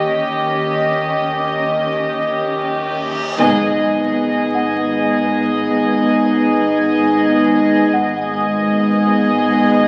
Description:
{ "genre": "cinematic, suspense film score", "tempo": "53 BPM", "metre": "4/4", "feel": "straight", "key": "G# minor from 3.4 s", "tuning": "A4 = 439 Hz", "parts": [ { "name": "rich studio violin section", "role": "melody", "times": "0.0-9.9 s", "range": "D#5", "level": "-23 LUFS", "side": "equal", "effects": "none" }, { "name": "rich studio violin section", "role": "second line", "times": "0.0-9.9 s", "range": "G4 to G#4", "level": "-23 LUFS", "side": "equal", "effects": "none" }, { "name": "warm studio viola section", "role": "accompaniment", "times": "0.0-9.9 s", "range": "B3 to C#4", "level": "-24 LUFS", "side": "equal", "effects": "none" }, { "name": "dark studio double bass section", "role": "bass", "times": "0.0-9.9 s", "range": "G#1 to D#2", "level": "-34 LUFS", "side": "equal", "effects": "none" }, { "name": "warm studio cello section", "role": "bass", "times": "0.0-9.9 s", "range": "G#2 to D#3", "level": "-26 LUFS", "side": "equal", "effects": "none" }, { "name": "reverse cymbal and impact", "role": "sound effects", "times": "2.4-7.9 s", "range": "none", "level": "-33 LUFS", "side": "equal", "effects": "none" }, { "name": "worn celesta", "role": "texture", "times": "0.0-9.9 s", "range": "F#5", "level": "-28 LUFS", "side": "equal", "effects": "none" }, { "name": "dark French horn section", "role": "sustained chords", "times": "3.4-9.9 s", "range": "B3 to D#4", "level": "-21 LUFS", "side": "equal", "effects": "none" }, { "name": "warm studio violin section", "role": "texture", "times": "3.4-9.9 s", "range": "D#6 to G#6", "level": "-29 LUFS", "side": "equal", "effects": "none" } ], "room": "wet scoring stage reverb, RT60 1.6 s", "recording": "very old 78 rpm record, vinyl crackle, nothing above 10.4 kHz", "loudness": "-16 LUFS", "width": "mono", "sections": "0.0-3.4 A section; 3.4-9.9 B section", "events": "reverse cymbal 2.4-3.4; band accent 3.4-4.5; impact 3.4-7.9", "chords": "0.0 D#7; 3.4 G#m" }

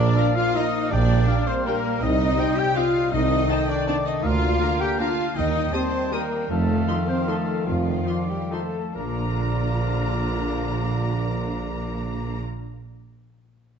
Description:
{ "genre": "classical, orchestral ballroom waltz", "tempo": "128-173 BPM", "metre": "3/4", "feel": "rubato", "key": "Bb major", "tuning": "A4 = 440 Hz", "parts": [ { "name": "mellow clarinet", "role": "second line", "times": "0.0-12.4 s", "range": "F4 to G5", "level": "-32 LUFS", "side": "left 2 dB", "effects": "none" }, { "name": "mellow cor anglais", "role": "second line", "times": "0.0-12.4 s", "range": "Bb4 to A5", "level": "-34 LUFS", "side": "equal", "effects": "none" }, { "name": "rich studio violin section", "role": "second line", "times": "0.0-12.4 s", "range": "D4 to G5", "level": "-34 LUFS", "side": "left 4 dB", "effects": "none" }, { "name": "silver concert flute", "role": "second line", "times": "0.0-12.4 s", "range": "F5 to G6", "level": "-34 LUFS", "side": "left 3 dB", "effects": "none" }, { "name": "bright trombone section", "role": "sustained chords", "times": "0.0-12.4 s", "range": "D3 to C4", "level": "-32 LUFS", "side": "right 4 dB", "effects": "none" }, { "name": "mellow French horn section", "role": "sustained chords", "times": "0.0-12.4 s", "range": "F3 to G4", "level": "-29 LUFS", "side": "left 5 dB", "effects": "none" }, { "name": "concert harp", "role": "arpeggios", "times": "0.0-13.3 s", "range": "Bb2 to Bb5", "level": "-33 LUFS", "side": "left 5 dB", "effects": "none" }, { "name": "rich studio cello section", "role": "bass", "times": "0.0-12.4 s", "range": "F3 to G4", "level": "-30 LUFS", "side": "right 2 dB", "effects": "none" }, { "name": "rich studio double bass section", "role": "bass", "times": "0.0-12.4 s", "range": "Bb1 to F2", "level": "-26 LUFS", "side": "right 3 dB", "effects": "none" }, { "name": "warm tuba", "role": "bass", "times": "0.0-12.4 s", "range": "F1 to Eb2", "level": "-31 LUFS", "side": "right 3 dB", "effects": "none" }, { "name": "rich studio violin section", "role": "melody", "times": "0.2-12.4 s", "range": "G5 to Eb6", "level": "-37 LUFS", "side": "left 4 dB", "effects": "none" }, { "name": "dark studio viola section", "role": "accompaniment", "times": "0.2-12.4 s", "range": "Bb3 to G4", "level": "-35 LUFS", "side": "equal", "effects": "none" } ], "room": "wet recital hall reverb, RT60 1.4 s", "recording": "dark, warm production, nothing above 7.8 kHz", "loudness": "-21 LUFS", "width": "side -7 dB against mid", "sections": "0.0-9.0 A section; 9.0-11.6 B section", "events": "slowing down 5.9-9.0", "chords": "0.0 Bb; 0.9 Gm/Bb; 2.0 Cm; 3.1 Adim/C; 4.2 Bb/D; 5.4 Eb; 6.5 F7; 9.0 Bb" }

